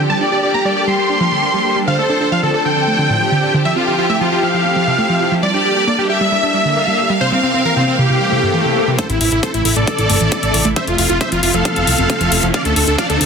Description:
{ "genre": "uplifting trance", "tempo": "135 BPM", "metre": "4/4", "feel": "straight", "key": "F major", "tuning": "A4 = 439 Hz", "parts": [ { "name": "warm studio violin section", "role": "second line", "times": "0.0-8.9 s", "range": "G4 to F5", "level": "-19 LUFS", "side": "left 1 dB", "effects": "ping-pong delay" }, { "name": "wide unison pluck", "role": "arpeggios", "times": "0.0-13.2 s", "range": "G2 to A4", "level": "-20 LUFS", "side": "right 2 dB", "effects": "cassette tape, sidechain pumping, tape echo" }, { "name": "dense compressed supersaw", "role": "melody", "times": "0.1-13.3 s", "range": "C4 to C6", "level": "-17 LUFS", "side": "right 1 dB", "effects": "sidechain pumping, low-pass filter, tape echo" }, { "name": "swell and riser", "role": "sound effects", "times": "8.3-13.3 s", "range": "none", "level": "-24 LUFS", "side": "left 3 dB", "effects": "none" }, { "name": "electronic hi-hat", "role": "drums", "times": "9.0-13.3 s", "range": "none", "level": "-20 LUFS", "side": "left 5 dB", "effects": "high-pass filter on hats" }, { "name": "electronic kick drum", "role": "drums", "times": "9.0-13.1 s", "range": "none", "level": "-22 LUFS", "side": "equal", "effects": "high-pass filter on kick" }, { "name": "fat analog bass", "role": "bass", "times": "9.1-13.3 s", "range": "F1 to D2", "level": "-19 LUFS", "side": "left 1 dB", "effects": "sidechain pumping" } ], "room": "light reverb", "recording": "dense, heavily limited modern master", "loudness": "-13 LUFS", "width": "side -6 dB against mid", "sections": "0.0-9.0 A section; 9.0-13.3 B section", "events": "swell 8.3-9.0; build-up 9.0-13.3; riser 9.0-13.3; filter sweep on synth pluck 9.0-13.3", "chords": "0.1 Gmadd9; 1.9 Dm7; 3.7 Fmaj7; 5.4 Gmadd9; 7.2 C7; 9.0 Am; 10.8 Fmaj7; 12.5 Dm7" }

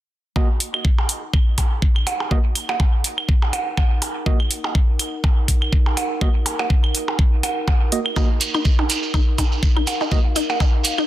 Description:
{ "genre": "minimal techno", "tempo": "123 BPM", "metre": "4/4", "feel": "swing 56% on 16ths", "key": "Eb minor", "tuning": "A4 = 440 Hz", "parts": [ { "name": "percussive organ stab", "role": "stabs", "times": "0.4-10.2 s", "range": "Bb3 to Eb5", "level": "-29 LUFS", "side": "right 5 dB", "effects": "chorus, dub echo" }, { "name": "electronic kick drum", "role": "drums", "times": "0.4-10.7 s", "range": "none", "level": "-17 LUFS", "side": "equal", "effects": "none" }, { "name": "percussion blips and claves", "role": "percussion", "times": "0.4-11.1 s", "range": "none", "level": "-26 LUFS", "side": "right 3 dB", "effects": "dub echo" }, { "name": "warbly tape-like pad", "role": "texture", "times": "1.2-11.1 s", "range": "Eb4 to Gb5", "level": "-31 LUFS", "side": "right 1 dB", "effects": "chorus, built-in reverb, sidechain pumping" }, { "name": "electronic hi-hat", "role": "drums", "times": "0.6-11.0 s", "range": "none", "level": "-23 LUFS", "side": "equal", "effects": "none" }, { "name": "resonant blip pluck", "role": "riff", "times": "8.2-11.0 s", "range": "Eb4", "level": "-26 LUFS", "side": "left 2 dB", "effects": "phaser, sidechain pumping, dub echo" }, { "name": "shekere", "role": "percussion", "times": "8.2-11.1 s", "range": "none", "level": "-26 LUFS", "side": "right 4 dB", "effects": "none" } ], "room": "little or no reverb", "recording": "dense, heavily limited modern master", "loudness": "-17 LUFS", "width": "side -14 dB against mid", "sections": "0.4-11.1 A section", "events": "fade-in on ambient pad 0.4-11.1", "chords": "0.4 Ebm" }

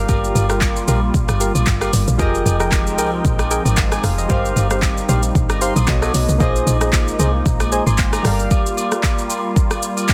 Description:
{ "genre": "amapiano", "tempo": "114 BPM", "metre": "4/4", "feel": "swing 55% on 16ths", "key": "unclear", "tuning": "A4 = 440 Hz", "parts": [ { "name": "warm analog keys", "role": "accompaniment", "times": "0.0-10.1 s", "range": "F3 to Eb6", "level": "-27 LUFS", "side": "equal", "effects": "chorus" }, { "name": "warm analog pad", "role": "sustained chords", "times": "0.0-10.1 s", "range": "F3 to G5", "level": "-28 LUFS", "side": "equal", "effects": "chorus, phaser, sidechain pumping" }, { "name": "woody log drum bass", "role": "bass", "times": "0.0-8.5 s", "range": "F1 to C2", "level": "-21 LUFS", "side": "equal", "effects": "none" }, { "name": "percussive organ stab", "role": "stabs", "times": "0.1-7.8 s", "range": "G4 to G5", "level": "-26 LUFS", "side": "equal", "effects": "chorus, digital delay" }, { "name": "afro-pop drum kit", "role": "drums", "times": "0.1-10.1 s", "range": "handclaps, hi-hat, kick drum, rim click, shaker", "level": "-21 LUFS", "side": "equal", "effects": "none" }, { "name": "agogo bells and woodblock", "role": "percussion", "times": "0.1-10.1 s", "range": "none", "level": "-31 LUFS", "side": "equal", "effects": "none" } ], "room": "little or no reverb", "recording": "dense, heavily limited modern master", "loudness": "-17 LUFS", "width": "mono", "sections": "0.0-10.1 A section", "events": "none", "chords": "0.0 Gm7; 2.2 Fm11; 4.3 Eb69/G; 5.9 B9; 6.4 Bb9sus4; 8.2 Gm7" }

